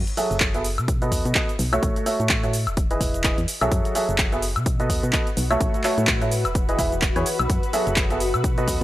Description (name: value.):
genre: piano house.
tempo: 127 BPM.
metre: 4/4.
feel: swing 57% on 16ths.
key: unclear.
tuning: A4 = 441 Hz.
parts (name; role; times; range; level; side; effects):
solid FM bass; bass; 0.0-8.8 s; E1 to B2; -26 LUFS; equal; tube saturation, sidechain pumping.
punchy analog drum machine; drums; 0.1-8.8 s; handclaps, hi-hat, shaker, woodblock; -26 LUFS; equal; overdrive.
clear upright piano; riff; 0.2-8.8 s; E3 to E5; -25 LUFS; right 1 dB; sidechain pumping, low-pass filter, analog delay.
granular cloud pad; texture; 2.6-8.8 s; F#4 to B4; -32 LUFS; left 2 dB; built-in reverb, sidechain pumping.
electronic kick drum; drums; 0.4-8.8 s; none; -24 LUFS; equal; none.
room: little or no reverb.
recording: dry, gritty hardware recording.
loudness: -19 LUFS.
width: side -15 dB against mid.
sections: 0.0-8.8 A section.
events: none.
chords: 0.0 F#m9; 0.6 B7; 1.8 A6; 2.5 Emaj7; 3.7 F#m9; 4.4 B7; 5.6 A6; 6.3 Emaj7; 7.5 F#m9; 8.2 B7.